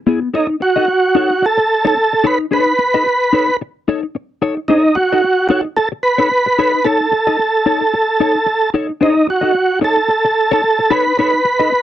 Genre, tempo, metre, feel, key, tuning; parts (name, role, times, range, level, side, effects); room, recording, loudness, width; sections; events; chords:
funk; 111 BPM; 4/4; swing 56% on 16ths; B mixolydian; A4 = 441 Hz
mellow electric guitar; accompaniment; 0.1-11.8 s; B3 to D#5; -17 LUFS; left 4 dB; analog chorus
tonewheel organ; melody; 0.3-11.8 s; D#4 to B4; -13 LUFS; right 2 dB; chorus vibrato
little or no reverb; dry, close 1970s-style studio recording; -12 LUFS; side -12 dB against mid
0.3-11.8 A section
0.3 B9